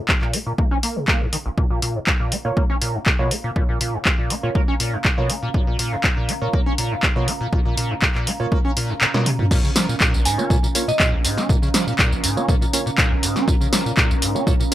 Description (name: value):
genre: acid house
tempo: 121 BPM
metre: 4/4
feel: straight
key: Bb minor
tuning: A4 = 440 Hz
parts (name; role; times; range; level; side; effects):
- deep dark ambient pad; texture; 2.0-14.7 s; Db4 to Bb5; -30 LUFS; right 2 dB; chorus, built-in reverb, sidechain pumping
- liquid acid bass; riff; 0.1-14.7 s; Bb1 to Db4; -24 LUFS; equal; overdrive, lush chorus, tape echo
- electronic kick drum; drums; 0.1-14.6 s; none; -20 LUFS; equal; none
- punchy analog drum machine; drums; 0.1-14.7 s; crash cymbal, handclaps, hi-hat, snare drum, tambourine, toms; -21 LUFS; equal; none
- percussive organ stab; stabs; 2.4-14.7 s; Bb3 to Db5; -28 LUFS; right 4 dB; lush chorus, tape echo
- soft synth bell; melody; 10.3-11.1 s; Eb5 to Ab5; -26 LUFS; right 1 dB; chorus, vintage 12-bit sampler grit, tape echo
room: light reverb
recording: dry, gritty hardware recording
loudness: -17 LUFS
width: side -13 dB against mid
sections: 0.0-9.5 A section; 9.5-14.7 B section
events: fade-in on ambient pad 0.0-9.5; filter sweep on acid bass 0.0-9.5; kick drops out 9.0-9.5; drum fill 9.1-9.5; drop 9.5-14.7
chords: 0.0 Bbm